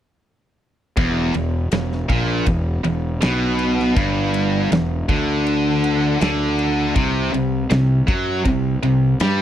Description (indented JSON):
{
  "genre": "blues rock power trio and southern rock",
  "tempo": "80 BPM",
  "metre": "4/4",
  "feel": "straight",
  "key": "E minor",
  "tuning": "A4 = 441 Hz",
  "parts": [
    { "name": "tight distorted guitar", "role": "riff", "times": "1.0-9.4 s", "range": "E2 to G3", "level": "-19 LUFS", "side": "equal", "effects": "distortion" },
    { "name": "fuzz fingered electric bass", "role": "bass", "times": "1.0-9.4 s", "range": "E1 to G2", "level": "-22 LUFS", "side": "equal", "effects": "overdrive" },
    { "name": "big rock drum kit", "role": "drums", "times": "1.0-9.4 s", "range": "kick drum, ride cymbal, snare drum", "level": "-24 LUFS", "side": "equal", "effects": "none" }
  ],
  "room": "small room reverb",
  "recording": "dry, close 1970s-style studio recording",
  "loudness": "-17 LUFS",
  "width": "side -11 dB against mid",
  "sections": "1.0-9.4 A section",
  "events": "none",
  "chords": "1.0 Em; 7.0 C5"
}